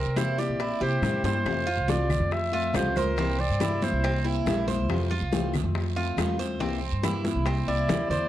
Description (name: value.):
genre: latin, Cuban son and guajira.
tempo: 140 BPM.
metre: 4/4.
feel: straight.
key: F major.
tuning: A4 = 445 Hz.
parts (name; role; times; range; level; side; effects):
warm clarinet; melody; 0.0-4.3, 7.7-8.3 s; Bb4 to E5; -30 LUFS; equal; none.
Cuban tres; arpeggios; 0.0-8.3 s; C4 to C5; -32 LUFS; right 4 dB; none.
upright bass; bass; 0.0-8.3 s; Bb1 to C3; -29 LUFS; right 1 dB; none.
picked steel-string acoustic guitar; accompaniment; 0.2-8.3 s; C3 to F4; -31 LUFS; left 4 dB; none.
bongos; percussion; 0.2-8.3 s; none; -35 LUFS; left 6 dB; none.
claves; percussion; 0.2-7.7 s; none; -42 LUFS; left 16 dB; none.
congas; percussion; 0.2-8.2 s; none; -33 LUFS; equal; none.
guiro; percussion; 0.2-8.3 s; none; -42 LUFS; right 18 dB; none.
room: small room ambience.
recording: dry, close 1970s-style studio recording.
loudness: -24 LUFS.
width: side -13 dB against mid.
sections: 0.0-1.5 A section; 1.5-8.3 B section.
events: drum fill 1.2, 7.9-8.3.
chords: 0.0 C9; 1.5 Fmaj7; 3.2 C9; 4.9 Fmaj7; 6.6 C9.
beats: 0.17 0.60 1.03 | 1.46 1.89 2.32 2.75 | 3.18 3.60 4.03 4.46 | 4.89 5.32 5.75 6.18 | 6.61 7.04 7.46 7.89.